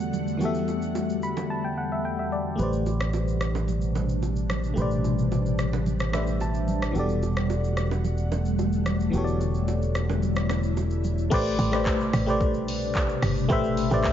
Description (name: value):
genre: amapiano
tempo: 110 BPM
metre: 4/4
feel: straight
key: A dorian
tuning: A4 = 440 Hz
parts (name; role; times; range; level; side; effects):
- FM electric piano; accompaniment; 0.0-14.1 s; E3 to B5; -28 LUFS; left 1 dB; chorus
- ethereal airy pad; sustained chords; 0.0-14.1 s; E2 to F#5; -29 LUFS; left 1 dB; ensemble chorus, built-in reverb, phaser, sidechain pumping
- deep house drum kit; drums; 0.0-14.1 s; crash cymbal, handclaps, hi-hat, kick drum, rim click, shaker; -32 LUFS; equal; none
- congas and bongos; percussion; 0.1-11.2 s; none; -35 LUFS; right 7 dB; none
- fingered electric bass; bass; 2.6-11.3 s; E1 to A1; -26 LUFS; equal; none
- tight log drum bass; bass; 11.3-14.1 s; G1 to C2; -28 LUFS; equal; none
room: light reverb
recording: nothing above 7.5 kHz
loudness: -23 LUFS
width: side -10 dB against mid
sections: 0.0-11.3 A section; 11.3-14.1 B section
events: FM electric piano fill 1.0-2.6, 5.9-7.0; drums muted 1.5-2.6; drop 11.3-14.1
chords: 0.0 Em11; 2.6 Am11; 7.0 Em11; 11.3 Am11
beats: | 0.41 0.95 1.50 2.04 | 2.59 3.13 3.68 4.23 | 4.77 5.32 5.86 6.41 | 6.95 7.50 8.04 8.59 | 9.13 9.68 10.23 10.77 | 11.32 11.86 12.41 12.95 | 13.50 14.04